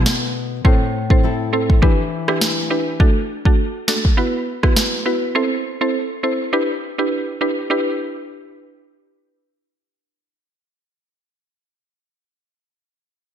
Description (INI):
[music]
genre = dancehall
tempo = 102 BPM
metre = 4/4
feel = swing 56% on 16ths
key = E minor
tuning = A4 = 440 Hz
[part]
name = mallet-like synth pluck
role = accompaniment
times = 0.0-11.5 s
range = A3 to C5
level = -20 LUFS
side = right 2 dB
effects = chorus
[part]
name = nylon-string guitar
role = arpeggios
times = 0.0-3.1 s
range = A2 to A4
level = -23 LUFS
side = left 5 dB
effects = none
[part]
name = afro-pop drum kit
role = drums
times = 0.1-4.9 s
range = kick drum, rim click, snare drum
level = -16 LUFS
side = equal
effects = gated reverb
[sound]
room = light reverb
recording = bright 1980s-style digital production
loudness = -16 LUFS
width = side -9 dB against mid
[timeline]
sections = 0.0-7.7 A section; 7.7-10.1 B section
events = none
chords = 0.0 N.C.; 0.6 Am; 1.8 Em7; 3.0 D; 4.2 Bsus4; 5.4 Am; 6.5 Em7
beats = 0.06 | 0.65 1.23 1.82 2.41 | 3.00 3.59 4.17 4.76 | 5.35 5.94 6.53 7.12 | 7.70 8.29 8.88 9.47